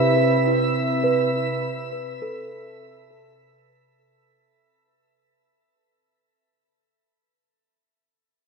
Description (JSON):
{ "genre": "ambient", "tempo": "51 BPM", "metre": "4/4", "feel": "straight", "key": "unclear", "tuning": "A4 = 441 Hz", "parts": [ { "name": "celesta", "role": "arpeggios", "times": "0.0-7.3 s", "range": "E4 to B4", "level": "-23 LUFS", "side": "right 2 dB", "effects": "ping-pong delay" }, { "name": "analog drone", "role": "drone", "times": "0.0-4.1 s", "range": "C3", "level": "-24 LUFS", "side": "equal", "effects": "chorus" }, { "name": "drifting glass-harmonics texture", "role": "texture", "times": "0.0-4.0 s", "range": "E5", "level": "-26 LUFS", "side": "right 3 dB", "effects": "chorus, built-in reverb" } ], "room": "wet shimmer reverb, RT60 6.8 s", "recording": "none", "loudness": "-20 LUFS", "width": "side -4 dB against mid", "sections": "0.0-4.0 A section", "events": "fade-out 0.0-4.0", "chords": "0.0 E5" }